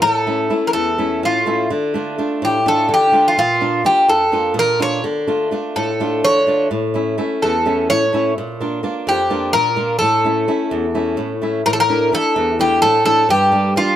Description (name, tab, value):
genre	greek folk, Greek bouzouki band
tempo	254 BPM (eighths)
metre	7/8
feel	straight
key	A phrygian dominant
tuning	A4 = 441 Hz
part	Greek bouzouki	melody	0.0-14.0 s	F4 to C#5	-15 LUFS	equal	none
part	flamenco guitar	accompaniment	0.0-14.0 s	E2 to F4	-19 LUFS	left 1 dB	none
room	light reverb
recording	none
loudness	-14 LUFS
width	side -11 dB against mid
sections	0.0-11.6 A section; 11.6-14.0 B section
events	none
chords	0.0 A; 1.7 Dm; 3.4 Bb; 5.0 Dm; 6.7 A; 8.4 Bb; 10.0 A; 11.6 Asus4; 13.3 Gm